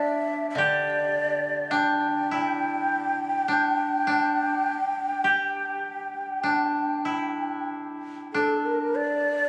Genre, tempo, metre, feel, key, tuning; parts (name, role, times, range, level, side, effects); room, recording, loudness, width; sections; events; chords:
japanese traditional, Japanese chamber music; 47-53 BPM; 4/4; rubato; A4 = 440 Hz
breathy mellow shakuhachi; melody; 0.0-9.5 s; A4 to G5; -28 LUFS; equal
koto; second line; 0.0-9.5 s; D4 to G4; -29 LUFS; equal
koto; accompaniment; 0.6-3.9 s; D3; -42 LUFS; equal
wet cathedral reverb, RT60 5.4 s; recorded on a phone in the room, studio reverb, compression; -26 LUFS; mono
0.0-9.0 A section